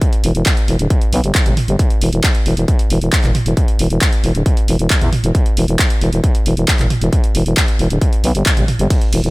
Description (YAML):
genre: driving peak-time techno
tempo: 135 BPM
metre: 4/4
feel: straight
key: E minor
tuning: A4 = 440 Hz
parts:
  - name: electronic kick drum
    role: drums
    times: 0.0-9.0 s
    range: none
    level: -14 LUFS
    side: equal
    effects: distortion
  - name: punchy analog drum machine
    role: drums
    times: 0.0-9.3 s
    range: handclaps, hi-hat, ride cymbal, toms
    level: -20 LUFS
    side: right 1 dB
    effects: none
  - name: growling FM bass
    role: bass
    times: 0.2-9.3 s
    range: D1 to E2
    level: -15 LUFS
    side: equal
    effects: sidechain pumping
room: little or no reverb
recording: none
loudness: -12 LUFS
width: side -22 dB against mid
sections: 0.0-9.3 A section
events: none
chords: none